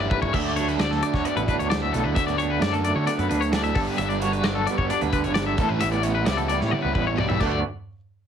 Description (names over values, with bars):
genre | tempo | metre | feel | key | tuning
math rock and midwest emo | 132 BPM | 4/4 | straight | D major | A4 = 440 Hz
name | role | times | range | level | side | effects
twangy electric guitar | arpeggios | 0.0-7.6 s | A4 to E5 | -27 LUFS | left 8 dB | tremolo
overdriven electric guitar | riff | 0.0-7.6 s | G2 to E4 | -28 LUFS | right 2 dB | none
fuzz picked electric bass | bass | 0.0-7.6 s | G1 to D3 | -28 LUFS | equal | overdrive
modern studio drum kit | drums | 0.1-7.5 s | crash cymbal, hi-hat, kick drum, snare drum, toms | -28 LUFS | equal | none
electric guitar through a small old amp | accompaniment | 0.3-7.6 s | D2 to F#4 | -28 LUFS | right 7 dB | tremolo
room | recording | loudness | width
light reverb | heavily compressed radio sound | -21 LUFS | side -8 dB against mid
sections
0.3-7.6 A section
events
drum fill 0.0-0.3, 6.7-7.6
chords
0.3 D69; 3.8 Gmaj9; 5.6 A9sus4; 7.4 D6; 7.6 N.C.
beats
| 0.35 0.80 1.25 1.71 | 2.17 2.62 3.08 3.53 | 3.99 4.44 4.90 5.36 | 5.81 6.27 6.72 7.18